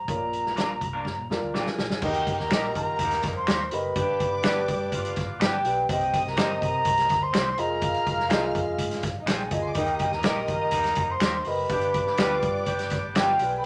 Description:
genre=uptempo 1960s-style soul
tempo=124 BPM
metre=4/4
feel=straight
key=Eb major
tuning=A4 = 440 Hz
part: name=concert flute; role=melody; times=0.0-13.7 s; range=G5 to C6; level=-30 LUFS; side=equal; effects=none
part: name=vintage muted fingered electric bass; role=bass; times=0.0-13.6 s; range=F1 to Eb3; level=-40 LUFS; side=equal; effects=tube saturation
part: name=warm concert grand piano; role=accompaniment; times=0.1-13.6 s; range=G2 to Eb5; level=-32 LUFS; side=equal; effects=none
part: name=vintage drum kit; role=drums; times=0.1-13.5 s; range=crash cymbal, hi-hat, kick drum, snare drum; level=-31 LUFS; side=equal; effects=none
part: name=electric guitar at the edge of break-up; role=stabs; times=0.6-13.3 s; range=Ab3 to C5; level=-35 LUFS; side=equal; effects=none
part: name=vibraphone with medium mallets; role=second line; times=1.5-13.7 s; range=G4 to C5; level=-37 LUFS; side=equal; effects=none
part: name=clear saxophone section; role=second line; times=2.0-5.7, 9.8-13.5 s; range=G3 to B4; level=-38 LUFS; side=equal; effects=none
part: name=warm studio string section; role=second line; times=2.0-13.7 s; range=D4 to F6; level=-38 LUFS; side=equal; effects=none
part: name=finger snap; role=percussion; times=2.5-13.3 s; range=none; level=-35 LUFS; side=equal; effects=none
room=wet studio reverb, RT60 0.6 s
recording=none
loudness=-25 LUFS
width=mono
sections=0.0-2.0 A section; 2.0-13.7 B section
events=drum fill 1.1-2.0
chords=0.1 Bb; 2.0 Eb; 4.0 G; 5.9 Cm; 7.6 Fm7; 9.8 Eb; 11.7 G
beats=| 0.08 0.57 1.05 1.54 | 2.02 2.51 2.99 3.48 | 3.96 4.44 4.93 5.41 | 5.89 6.38 6.86 7.34 | 7.83 8.31 8.79 9.28 | 9.76 10.25 10.73 11.22 | 11.71 12.19 12.68 13.16 | 13.65

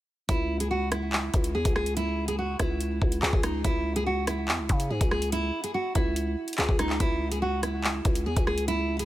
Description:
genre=hip hop, drill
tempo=143 BPM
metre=4/4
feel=half-time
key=C# minor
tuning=A4 = 440 Hz
part: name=nylon-string guitar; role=melody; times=0.3-9.1 s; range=D#4 to G#4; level=-29 LUFS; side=right 1 dB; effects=digital delay
part: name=growling 808-style bass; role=bass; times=0.3-9.1 s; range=C#2 to C#3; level=-29 LUFS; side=equal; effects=none
part: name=drill drum kit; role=drums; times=0.3-9.1 s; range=handclaps, hi-hat, kick drum, rim click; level=-27 LUFS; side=equal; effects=none
room=little or no reverb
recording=none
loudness=-25 LUFS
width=side -14 dB against mid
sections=0.3-9.1 A section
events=none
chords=0.3 C#m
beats=| 0.29 0.71 1.13 1.55 | 1.97 2.39 2.81 3.23 | 3.65 4.07 4.48 4.90 | 5.32 5.74 6.16 6.58 | 7.00 7.42 7.84 8.26 | 8.68

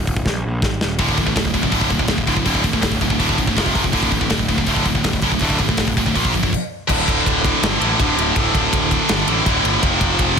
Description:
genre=heavy metal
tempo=163 BPM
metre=4/4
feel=straight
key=D minor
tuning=A4 = 443 Hz
part: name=fuzz picked electric bass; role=bass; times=0.0-10.4 s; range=D1 to Bb1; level=-23 LUFS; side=equal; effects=overdrive
part: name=tight metal drum kit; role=drums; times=0.1-10.4 s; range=crash cymbal, hi-hat, kick drum, ride cymbal, snare drum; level=-21 LUFS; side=equal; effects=none
part: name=heavy high-gain guitar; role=riff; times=1.0-10.4 s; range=D2 to Bb3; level=-17 LUFS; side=equal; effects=distortion
room=studio reverb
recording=dense, heavily limited modern master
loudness=-15 LUFS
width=side -6 dB against mid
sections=0.0-6.9 A section; 6.9-10.4 B section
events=drum fill 0.3-1.0; stop 6.5-6.9; half time 6.9-10.4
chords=0.3 N.C.; 0.6 G#5; 1.0 D5; 3.6 F5; 3.9 D5; 6.2 Bb5; 6.5 N.C.; 6.9 D5; 9.8 F5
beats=0.26 0.63 | 0.99 1.36 1.73 2.10 | 2.47 2.84 3.21 3.57 | 3.94 4.31 4.68 5.05 | 5.42 5.79 6.16 6.53 | 6.89 7.26 7.63 8.00 | 8.36 8.73 9.10 9.46 | 9.83 10.19

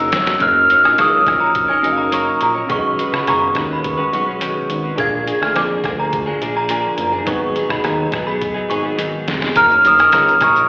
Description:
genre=indie pop, bedroom pop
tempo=105 BPM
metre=4/4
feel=straight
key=F# major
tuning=A4 = 440 Hz
part: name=glockenspiel with rubber mallets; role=melody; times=0.0-4.7, 9.6-10.7 s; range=C#6 to E#6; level=-13 LUFS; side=equal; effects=wide subtle chorus, slapback echo, tape echo
part: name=direct-recorded clean electric guitar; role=accompaniment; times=0.0-10.7 s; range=G#2 to C#5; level=-23 LUFS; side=equal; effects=analog chorus, warbly pitch drift
part: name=tine electric piano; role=accompaniment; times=0.0-9.6 s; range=C#4 to F#5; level=-25 LUFS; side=equal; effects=cassette tape
part: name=fat analog bass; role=bass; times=0.0-10.7 s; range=E#1 to F#2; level=-25 LUFS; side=equal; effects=none
part: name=trip hop sampler-style drum kit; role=drums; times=0.1-10.7 s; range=hi-hat, kick drum, rim click, shaker, snare drum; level=-24 LUFS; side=equal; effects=none
part: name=synth chime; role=second line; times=0.4-10.5 s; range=G#5 to G#6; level=-22 LUFS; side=right 1 dB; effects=ensemble chorus, tremolo, wide subtle chorus, slapback echo, tape echo
room=moderate club reverb, RT60 0.5 s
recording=live gig heard through the venue's PA, recital hall reverb, AM radio sound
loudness=-13 LUFS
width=side -24 dB against mid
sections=0.4-9.6 A section; 9.6-10.7 B section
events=drum fill 0.0-0.4, 9.0-9.6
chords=0.4 F#6; 2.7 B69; 5.0 A#7; 7.3 G#m7; 9.6 F#6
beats=| 0.41 0.98 1.55 2.13 | 2.70 3.27 3.84 4.41 | 4.99 5.56 6.13 6.70 | 7.27 7.84 8.41 8.99 | 9.56 10.13

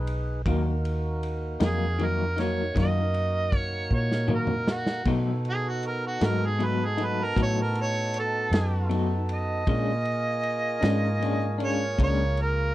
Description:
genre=slow blues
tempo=52 BPM (dotted quarters)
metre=12/8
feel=straight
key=Eb minor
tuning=A4 = 440 Hz
part: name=mellow harmonica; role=melody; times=0.0-12.7 s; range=Gb4 to D#5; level=-29 LUFS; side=right 2 dB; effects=none
part: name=tonewheel organ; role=sustained chords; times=0.0-12.7 s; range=Bb3 to Cb5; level=-35 LUFS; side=right 1 dB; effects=slow rotary speaker
part: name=vintage muted fingered electric bass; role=bass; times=0.0-12.7 s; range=Cb2 to B2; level=-28 LUFS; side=equal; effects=none
part: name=raw garage drum kit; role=drums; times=0.1-12.5 s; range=crash cymbal, kick drum, ride cymbal, snare drum, toms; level=-28 LUFS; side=equal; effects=none
part: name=electric guitar through a small old amp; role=accompaniment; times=0.5-12.2 s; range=Bb2 to Eb4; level=-29 LUFS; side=left 3 dB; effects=tremolo
part: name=mellow horn section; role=sustained chords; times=5.1-12.7 s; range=B4 to Bb5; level=-38 LUFS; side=equal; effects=none
room=little or no reverb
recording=dry, close 1970s-style studio recording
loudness=-24 LUFS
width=side -15 dB against mid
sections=0.0-12.7 A section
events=harmonica solo 0.0-12.7; drum fill 3.9-5.1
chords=0.5 Ebm; 5.1 B7; 9.7 Bb7#9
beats=| 0.45 1.60 2.76 3.91 | 5.06 6.21 7.37 8.52 | 9.68 10.83 11.98

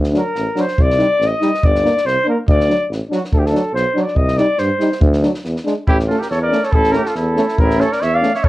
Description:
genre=balkan folk, Balkan brass band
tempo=141 BPM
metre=2/4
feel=swing 54% on 16ths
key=D phrygian dominant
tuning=A4 = 441 Hz
part: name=warm tuba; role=bass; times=0.0-8.5 s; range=G1 to G2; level=-19 LUFS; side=equal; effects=none
part: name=compact cocktail drum kit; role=percussion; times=0.0-8.5 s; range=kick drum, snare drum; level=-18 LUFS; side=equal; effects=none
part: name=clear euphonium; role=accompaniment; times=0.1-8.3 s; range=C#4 to Eb4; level=-21 LUFS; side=left 2 dB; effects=none
part: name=warm trombone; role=accompaniment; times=0.1-8.3 s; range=F#3 to Bb3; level=-23 LUFS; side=right 3 dB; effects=none
part: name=dark cornet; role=melody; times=0.2-8.5 s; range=F#4 to F5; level=-18 LUFS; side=left 1 dB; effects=none
part: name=warm trumpet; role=second line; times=5.9-8.5 s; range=E4 to D5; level=-23 LUFS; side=right 3 dB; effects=none
room=moderate studio ambience, RT60 0.5 s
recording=worn, warbling old tape, cassette tape, warbly pitch drift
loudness=-14 LUFS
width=side -17 dB against mid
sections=0.0-5.9 A section; 5.9-8.5 B section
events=cornet solo 0.0-5.9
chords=0.0 D; 0.8 Cm; 1.6 Gm; 2.5 D; 4.2 Cm; 5.0 D; 5.4 E7; 5.9 A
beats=0.35 | 0.77 1.20 | 1.62 2.05 | 2.47 2.90 | 3.32 3.75 | 4.17 4.60 | 5.02 5.45 | 5.88 6.30 | 6.73 7.16 | 7.58 8.01 | 8.44

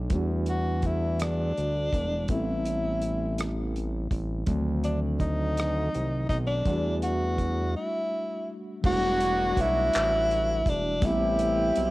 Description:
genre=slow six-eight R&B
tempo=55 BPM (dotted quarters)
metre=6/8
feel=straight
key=E minor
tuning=A4 = 440 Hz
part: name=mellow tine electric piano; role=accompaniment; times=0.0-11.9 s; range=Eb3 to F#4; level=-33 LUFS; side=equal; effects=medium stereo tremolo
part: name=fat analog bass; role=bass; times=0.0-11.9 s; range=E1 to E2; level=-29 LUFS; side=equal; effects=none
part: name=damped 70s drum kit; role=drums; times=0.1-11.9 s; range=crash cymbal, handclaps, hi-hat, kick drum, rim click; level=-30 LUFS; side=equal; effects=none
part: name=breathy tenor saxophone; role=melody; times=0.5-11.9 s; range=D4 to F#4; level=-28 LUFS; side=left 1 dB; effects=none
part: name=clear horn section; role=stabs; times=8.8-11.9 s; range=F#3 to G4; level=-35 LUFS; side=right 6 dB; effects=none
room=studio reverb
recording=home recording on cassette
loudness=-24 LUFS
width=side -19 dB against mid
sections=0.0-8.8 A section; 8.8-11.9 B section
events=break 7.8-8.8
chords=0.1 Em11; 2.3 Am9; 4.5 D7b9; 6.7 Em11; 11.0 Am9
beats=| 0.11 1.20 | 2.29 3.39 | 4.48 5.57 | 6.66 7.75 | 8.84 9.93 | 11.02

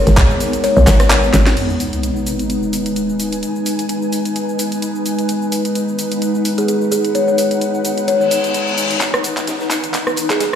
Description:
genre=bass house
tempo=129 BPM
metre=4/4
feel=swing 56% on 16ths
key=G# minor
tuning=A4 = 441 Hz
part: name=dark analog pad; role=sustained chords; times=0.0-10.6 s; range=G#3 to B4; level=-21 LUFS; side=equal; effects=chorus, sidechain pumping
part: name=hollow knocking FM bass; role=bass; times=0.0-1.6 s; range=G#1 to B1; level=-12 LUFS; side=equal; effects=sidechain pumping
part: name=granular cloud pad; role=texture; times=0.0-10.6 s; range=B3 to G#5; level=-23 LUFS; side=left 2 dB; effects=built-in reverb, sidechain pumping
part: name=garage drum kit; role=drums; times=0.1-10.6 s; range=cabasa, crash cymbal, handclaps, hi-hat, ride cymbal, rim click, snare drum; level=-21 LUFS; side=equal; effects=overdrive
part: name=oversized low-tuned drum kit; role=drums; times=0.1-1.6, 9.0-10.6 s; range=hi-hat, snare drum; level=-30 LUFS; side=left 2 dB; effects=none
part: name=kalimba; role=melody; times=0.6-0.8, 6.6-10.5 s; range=G#4 to C#5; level=-19 LUFS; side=left 2 dB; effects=dub echo
part: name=sub drop and reverse cymbal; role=sound effects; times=1.6-3.4, 8.2-9.0 s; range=none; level=-24 LUFS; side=left 1 dB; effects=none
room=moderate lush hall reverb, RT60 2.1 s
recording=played on a big sound system in a bare room, large studio reverb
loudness=-14 LUFS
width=side -9 dB against mid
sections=0.0-1.6 A section; 1.6-9.0 B section; 9.0-10.6 C section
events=drop 0.0-1.6; drum fill 1.3, 9.0-10.6; impact 1.6-3.4; reverse cymbal 8.2-9.0; build-up 9.0-10.6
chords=0.0 G#m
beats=0.17 0.64 1.10 | 1.57 2.03 2.50 2.96 | 3.43 3.89 4.36 4.82 | 5.29 5.75 6.22 6.68 | 7.15 7.62 8.08 8.54 | 9.01 9.47 9.94 10.40

